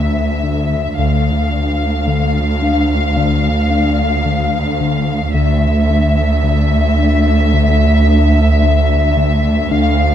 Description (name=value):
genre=cinematic, suspense film score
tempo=55 BPM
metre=4/4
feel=straight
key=D minor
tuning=A4 = 440 Hz
part: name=warm studio violin section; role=melody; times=0.0-10.1 s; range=E5 to F5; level=-19 LUFS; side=left 4 dB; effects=none
part: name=fat analog bass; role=riff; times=0.0-10.0 s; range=D3 to D4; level=-20 LUFS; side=left 5 dB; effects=none
part: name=warm studio cello section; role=bass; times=0.0-10.1 s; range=D2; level=-18 LUFS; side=right 1 dB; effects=none
part: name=warm studio double bass section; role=bass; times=0.0-10.1 s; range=D2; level=-19 LUFS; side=right 2 dB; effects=none
part: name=soft dub sub bass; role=drone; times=0.0-10.1 s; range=D2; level=-18 LUFS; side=right 1 dB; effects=none
room=moderate scoring stage reverb, RT60 2.0 s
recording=dark, warm production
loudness=-12 LUFS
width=side -10 dB against mid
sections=0.0-10.1 A section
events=none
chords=0.0 Dsus2